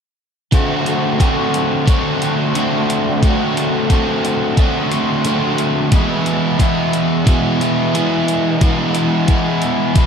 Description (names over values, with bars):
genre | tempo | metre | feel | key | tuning
rock, shoegaze and dream pop | 89 BPM | 4/4 | straight | D mixolydian | A4 = 440 Hz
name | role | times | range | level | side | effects
crunchy overdriven guitar | riff | 0.5-10.1 s | E2 to F#4 | -15 LUFS | equal | lush chorus
gated 80s digital drum machine | drums | 0.5-10.1 s | hi-hat, kick drum | -15 LUFS | equal | overdrive
room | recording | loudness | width
wet plate reverb, RT60 2.1 s | dreamy mix soaked in reverb | -14 LUFS | side -6 dB against mid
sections
0.5-10.1 A section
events
none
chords
0.5 D7; 5.9 E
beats
| 0.52 1.19 1.87 2.54 | 3.22 3.90 4.57 5.25 | 5.92 6.59 7.27 7.94 | 8.61 9.29 9.96